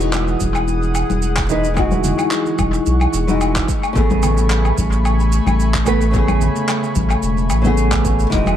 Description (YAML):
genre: sunset chillout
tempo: 110 BPM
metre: 4/4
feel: swing 54% on 16ths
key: unclear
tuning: A4 = 440 Hz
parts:
  - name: nylon-string guitar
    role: accompaniment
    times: 0.0-8.6 s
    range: C#3 to B4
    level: -20 LUFS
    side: equal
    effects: auto-pan, analog delay
  - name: airy breathy pad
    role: sustained chords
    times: 0.0-8.6 s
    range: A3 to E6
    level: -24 LUFS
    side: left 2 dB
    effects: chorus
  - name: round analog bass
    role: bass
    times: 0.0-8.6 s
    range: E1 to B1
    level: -18 LUFS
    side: equal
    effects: none
  - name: deep house drum kit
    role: drums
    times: 0.0-8.6 s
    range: handclaps, hi-hat, shaker, woodblock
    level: -24 LUFS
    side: left 1 dB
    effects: analog delay
  - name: electronic kick drum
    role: drums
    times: 0.4-8.4 s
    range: none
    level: -22 LUFS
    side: equal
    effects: none
  - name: congas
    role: percussion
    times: 0.4-8.6 s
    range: none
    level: -26 LUFS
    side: left 4 dB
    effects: analog delay
room: light reverb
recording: echo-heavy mix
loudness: -14 LUFS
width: side -10 dB against mid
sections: 0.0-8.6 A section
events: none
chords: 0.0 Emaj9; 3.7 Amaj9